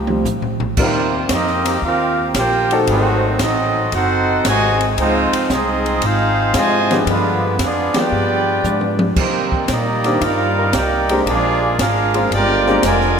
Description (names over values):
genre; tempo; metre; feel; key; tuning
jazz, big band swing; 114 BPM; 4/4; swing 68% on 8ths; Eb major; A4 = 440 Hz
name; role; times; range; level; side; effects
warm trombone section; sustained chords; 0.0-13.2 s; C3 to Bb4; -29 LUFS; left 2 dB; none
upright bass; bass; 0.0-13.2 s; F1 to C3; -22 LUFS; equal; none
warm upright piano; accompaniment; 0.1-3.4, 6.9-12.8 s; Eb3 to Bb4; -22 LUFS; left 2 dB; none
open jazz drum kit; drums; 0.1-13.2 s; crash cymbal, hi-hat, kick drum, ride cymbal, snare drum, toms; -23 LUFS; equal; none
warm trumpet section; melody; 0.8-13.2 s; Ab3 to Ab5; -18 LUFS; equal; none
clear trombone section; second line; 0.8-13.2 s; C3 to G4; -21 LUFS; right 3 dB; none
room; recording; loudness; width
wet concert hall reverb, RT60 2.5 s; minimal, uncompressed stereo recording; -14 LUFS; side -6 dB against mid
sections
0.8-13.2 A section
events
drum fill 0.0-0.8, 8.6-9.2; band accent 7.9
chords
0.0 Eb69; 2.9 Ab7b9; 5.0 Dbmaj9; 7.1 G7b9; 9.2 Cm9; 11.3 Bb7